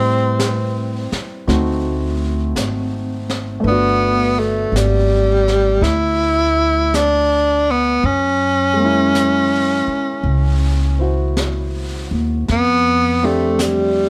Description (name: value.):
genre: jazz ballad.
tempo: 54 BPM.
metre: 4/4.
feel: swing 67% on 8ths.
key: unclear.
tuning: A4 = 437 Hz.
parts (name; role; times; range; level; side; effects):
breathy tenor saxophone; melody; 0.0-14.1 s; G3 to E4; -18 LUFS; equal; none.
warm grand piano; accompaniment; 0.0-14.1 s; G3 to C5; -25 LUFS; equal; none.
upright bass; bass; 0.0-14.1 s; G1 to A2; -22 LUFS; equal; none.
jazz brush drum kit; drums; 0.4-14.1 s; brushed snare drum, hi-hat, snare drum; -30 LUFS; equal; none.
room: light reverb.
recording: none.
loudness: -17 LUFS.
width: mono.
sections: 0.0-14.1 A section.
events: none.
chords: 0.0 Am7; 1.5 D7b9; 3.6 Gmaj9; 8.0 F#9; 12.5 F6.